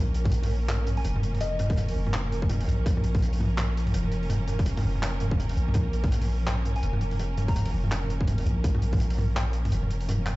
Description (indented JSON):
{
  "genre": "half-time drum and bass",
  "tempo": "166 BPM",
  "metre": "4/4",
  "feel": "swing 59% on 16ths, half-time",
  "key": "Bb minor",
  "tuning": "A4 = 437 Hz",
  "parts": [
    { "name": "warm symphonic string section", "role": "sustained chords", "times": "0.0-10.4 s", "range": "F3 to Bb4", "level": "-34 LUFS", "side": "right 1 dB", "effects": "sidechain pumping" },
    { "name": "long sustained 808-style bass", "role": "bass", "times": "0.0-10.4 s", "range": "F1 to Bb1", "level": "-27 LUFS", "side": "equal", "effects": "none" },
    { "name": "crunchy breakbeat drum kit", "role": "drums", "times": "0.1-10.4 s", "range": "handclaps, hi-hat, toms", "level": "-29 LUFS", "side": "equal", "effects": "none" },
    { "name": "electronic kick drum", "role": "drums", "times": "0.3-9.0 s", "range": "none", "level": "-25 LUFS", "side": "equal", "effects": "overdrive" },
    { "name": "soft synth bell", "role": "melody", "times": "1.0-1.8, 6.8-7.7 s", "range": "Eb5 to Bb5", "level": "-39 LUFS", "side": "left 3 dB", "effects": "chorus, phaser, dub echo" }
  ],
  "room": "little or no reverb",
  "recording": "played on a big sound system in a bare room, large studio reverb, nothing above 7.8 kHz",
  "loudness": "-24 LUFS",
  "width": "side -19 dB against mid",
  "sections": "0.0-10.4 A section",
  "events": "none",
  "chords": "0.0 Bbm",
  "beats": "0.33 0.69 1.05 | 1.41 1.77 2.13 2.50 | 2.86 3.22 3.58 3.94 | 4.30 4.67 5.03 5.39 | 5.75 6.11 6.47 6.83 | 7.20 7.56 7.92 8.28 | 8.64 9.00 9.36 9.73 | 10.09"
}